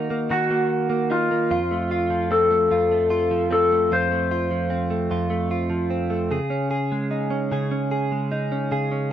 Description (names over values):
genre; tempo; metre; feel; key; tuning
pop; 50 BPM (dotted quarters); 6/8; straight; unclear; A4 = 440 Hz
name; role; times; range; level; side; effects
direct-recorded clean electric guitar; accompaniment; 0.0-9.1 s; F2 to Ab4; -23 LUFS; right 1 dB; wide subtle chorus
clean lap steel guitar; melody; 0.3-4.8 s; F4 to C5; -20 LUFS; left 2 dB; none
room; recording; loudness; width
moderate small room reverb, RT60 0.6 s; dry, close 1970s-style studio recording; -20 LUFS; side -10 dB against mid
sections
0.0-9.1 A section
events
none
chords
0.0 Ebm; 1.5 F; 6.3 Dbsus2